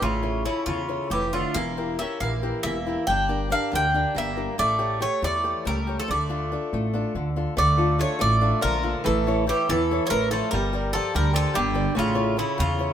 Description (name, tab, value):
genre	greek folk, Greek bouzouki band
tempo	282 BPM (eighths)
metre	7/8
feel	straight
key	D harmonic minor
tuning	A4 = 440 Hz
part	Greek bouzouki	melody	0.0-12.9 s	E4 to G5	-26 LUFS	equal	none
part	Greek bouzouki	second line	0.0-12.9 s	C#3 to D4	-29 LUFS	right 2 dB	none
part	picked acoustic archtop guitar	accompaniment	0.0-12.9 s	C#3 to D5	-28 LUFS	left 3 dB	none
part	upright bass	bass	0.0-12.9 s	E1 to E2	-27 LUFS	equal	none
room	light reverb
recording	minimal, uncompressed stereo recording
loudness	-22 LUFS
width	side -9 dB against mid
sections	0.0-7.6 A section; 7.6-12.9 A section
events	speeding up 0.0-12.9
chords	0.0 A; 1.6 Edim; 3.1 Gm; 4.6 A7; 6.1 Dm; 9.1 A; 10.5 Gm; 12.0 A